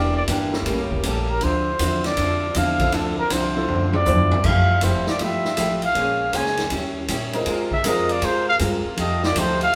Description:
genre	jazz, big band swing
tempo	159 BPM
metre	4/4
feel	swing 66% on 8ths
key	D minor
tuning	A4 = 441 Hz
part	breathy trumpet	melody	0.0-9.8 s	A4 to Ab5	-25 LUFS	equal	none
part	vintage hollow-body jazz guitar	accompaniment	0.0-9.8 s	A2 to C5	-28 LUFS	equal	none
part	mellow saxophone section	sustained chords	0.0-9.8 s	C3 to G4	-33 LUFS	equal	none
part	upright bass	bass	0.0-9.7 s	E1 to Bb2	-30 LUFS	equal	none
part	swinging big-band drum kit	drums	0.3-9.7 s	crash cymbal, hi-hat, kick drum, ride cymbal, snare drum, toms	-27 LUFS	equal	none
part	warm grand piano	accompaniment	0.5-5.1, 7.3-8.1 s	F3 to C5	-30 LUFS	equal	none
room	wet studio reverb, RT60 0.6 s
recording	band playing live in one room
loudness	-21 LUFS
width	mono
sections	0.0-4.4 A section; 4.4-9.8 A section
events	trumpet solo 0.0-9.8; drum fill 3.7-4.4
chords	0.0 Em7b5; 0.7 A7b9; 1.4 Dm9; 4.4 Fmaj9; 6.0 Bbm9; 6.7 Eb7b9; 7.5 Ab69; 9.0 F9

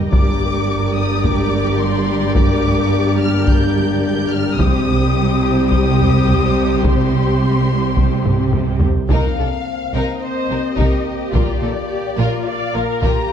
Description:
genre	cinematic, epic orchestral film score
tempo	107 BPM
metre	4/4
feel	straight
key	unclear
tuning	A4 = 440 Hz
part	rich symphonic violin section	second line	0.0-13.3 s	D4 to D5	-26 LUFS	left 3 dB	none
part	rich symphonic viola section	accompaniment	0.0-13.3 s	G3 to D5	-23 LUFS	right 1 dB	none
part	rich symphonic double bass section	bass	0.0-13.1 s	G1 to C2	-21 LUFS	right 3 dB	none
part	warm symphonic cello section	bass	0.0-13.1 s	G2 to C3	-22 LUFS	right 3 dB	none
part	dark symphonic violin section	melody	0.1-13.3 s	D5 to G6	-25 LUFS	left 5 dB	none
part	dark French horn section	sustained chords	0.1-13.3 s	G3 to F4	-23 LUFS	left 6 dB	none
part	taiko ensemble	drums	0.1-13.3 s	none	-18 LUFS	equal	none
room	moderate scoring stage reverb, RT60 1.9 s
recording	dark, warm production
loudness	-14 LUFS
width	side -8 dB against mid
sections	0.0-9.1 A section; 9.1-13.3 B section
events	drum fill 8.2-9.1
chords	0.1 Gm; 4.6 Cm; 9.1 Cm7; 11.3 Bb

